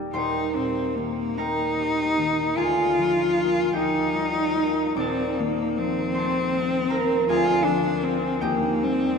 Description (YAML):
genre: classical, romantic duo for cello and harp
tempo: 50 BPM (dotted quarters)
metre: 6/8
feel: uneven beats, rubato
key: Eb major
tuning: A4 = 440 Hz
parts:
  - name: concert harp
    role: accompaniment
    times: 0.0-9.2 s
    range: Eb1 to D6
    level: -25 LUFS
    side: right 1 dB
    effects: none
  - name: clear cello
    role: melody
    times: 0.1-9.2 s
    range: Bb3 to F4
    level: -23 LUFS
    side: left 2 dB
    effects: none
room: wet cathedral reverb, RT60 7.0 s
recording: in a vast, echoing space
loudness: -21 LUFS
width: side -5 dB against mid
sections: 0.1-9.2 A section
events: none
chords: 0.1 Eb; 2.6 Bb7/D; 3.7 Eb; 5.0 F7/Eb; 7.3 Bb7/D; 8.4 Eb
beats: | 0.14 1.37 | 2.57 3.73 | 4.99 6.16 | 7.29 8.43